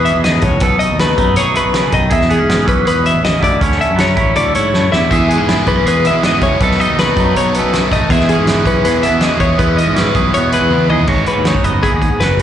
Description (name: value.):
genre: math rock and midwest emo.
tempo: 161 BPM.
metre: 4/4.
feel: straight.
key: E major.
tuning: A4 = 440 Hz.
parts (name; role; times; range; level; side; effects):
twangy electric guitar; accompaniment; 0.0-12.4 s; E2 to A4; -17 LUFS; right 6 dB; phaser, slapback echo.
twelve-string electric guitar; arpeggios; 0.0-12.4 s; G#4 to E5; -16 LUFS; left 4 dB; slapback echo.
overdriven fingered electric bass; bass; 0.0-12.4 s; F#1 to G#2; -17 LUFS; equal; none.
loose indie drum kit; drums; 0.1-12.4 s; crash cymbal, hi-hat, kick drum, snare drum, toms; -18 LUFS; equal; none.
biting overdriven guitar; riff; 5.1-11.1 s; B2 to A4; -19 LUFS; equal; slapback echo.
room: studio ambience.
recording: live gig heard through the venue's PA, recital hall reverb, nothing above 10.8 kHz.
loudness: -11 LUFS.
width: side -10 dB against mid.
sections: 0.0-11.1 A section; 11.1-12.4 B section.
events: drum fill 4.7-5.1, 10.7-11.1.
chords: 0.0 E6; 0.6 B7; 2.1 E6; 3.4 Dmaj9; 5.1 E6; 6.6 B7; 8.1 E6; 11.1 G#m7.